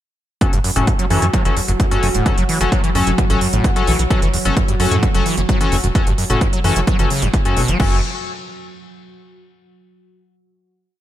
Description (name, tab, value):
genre	driving peak-time techno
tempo	130 BPM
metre	4/4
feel	straight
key	F# minor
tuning	A4 = 436 Hz
part	screaming distorted acid line	riff	0.4-8.0 s	E2 to F#3	-21 LUFS	equal	distortion, analog chorus, sidechain pumping, digital delay
part	sync-sweep polysynth	stabs	0.4-8.0 s	C#4 to A4	-22 LUFS	left 4 dB	chorus, cassette tape, sidechain pumping, digital delay
part	analog drone	drone	0.4-7.8 s	F#3 to F#4	-26 LUFS	right 2 dB	chorus, sidechain pumping
part	electronic kick drum	drums	0.4-7.9 s	none	-17 LUFS	equal	none
part	techno drum kit	drums	0.4-7.9 s	crash cymbal, hi-hat	-26 LUFS	right 2 dB	none
part	tight sequencer bass	bass	0.5-8.0 s	E1 to F#2	-19 LUFS	equal	sidechain pumping
room	light reverb, digital ambience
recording	bright 1980s-style digital production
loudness	-14 LUFS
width	side -12 dB against mid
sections	0.4-7.8 groove; 7.8-9.6 final chord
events	filter sweep on acid bass 0.4-7.8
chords	0.4 F#m